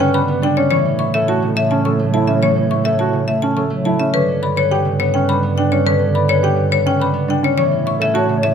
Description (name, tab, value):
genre	classical, minimalist pattern music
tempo	105 BPM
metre	3/4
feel	straight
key	A mixolydian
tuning	A4 = 440 Hz
part	marimba with hard mallets	melody	0.0-8.5 s	B4 to C#6	-19 LUFS	left 8 dB	none
part	mellow wooden-headed alto flute	second line	0.0-8.5 s	B4 to C#5	-26 LUFS	right 6 dB	none
part	concert harp	accompaniment	0.0-8.5 s	C#3 to C#4	-19 LUFS	right 1 dB	none
part	dark baby grand piano	arpeggios	0.0-8.3 s	C#4 to E5	-21 LUFS	right 6 dB	none
part	warm double bass	bass	0.0-8.5 s	G2 to A2	-22 LUFS	right 3 dB	none
room	moderate recital hall reverb, RT60 1.6 s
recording	close, detailed microphones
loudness	-14 LUFS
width	side -7 dB against mid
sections	0.0-8.5 A section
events	none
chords	0.0 G; 0.7 A; 4.1 G; 7.6 A